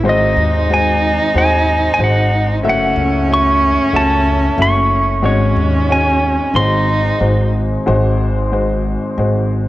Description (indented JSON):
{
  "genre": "acoustic folk-pop ballad",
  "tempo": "92 BPM",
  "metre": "4/4",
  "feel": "straight",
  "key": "unclear",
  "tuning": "A4 = 440 Hz",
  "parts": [
    { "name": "rich cello", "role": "second line", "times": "0.0-7.5 s", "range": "C#4 to D#4", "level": "-18 LUFS", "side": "right 2 dB", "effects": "none" },
    { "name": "warm baby grand piano", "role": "accompaniment", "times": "0.0-9.7 s", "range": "F#1 to E5", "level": "-18 LUFS", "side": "left 2 dB", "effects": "none" },
    { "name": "upright bass", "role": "bass", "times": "0.0-9.7 s", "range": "F#1 to D#2", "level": "-17 LUFS", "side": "equal", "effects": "none" },
    { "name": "pedal steel guitar", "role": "melody", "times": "0.1-7.5 s", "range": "C#5 to C#6", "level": "-17 LUFS", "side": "equal", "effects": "none" }
  ],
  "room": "moderate concert hall reverb, RT60 2.2 s",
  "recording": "worn, warbling old tape, cassette tape, warbly pitch drift",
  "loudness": "-12 LUFS",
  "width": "side -16 dB against mid",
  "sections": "0.0-7.9 A section; 7.9-9.7 B section",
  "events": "none",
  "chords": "0.1 G#7; 2.6 F#m7; 5.2 G#7sus4; 6.5 G#7",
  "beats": "| 0.05 0.70 1.35 2.00 | 2.65 3.29 3.94 4.59 | 5.24 5.89 6.55 7.21 | 7.87 8.52 9.18"
}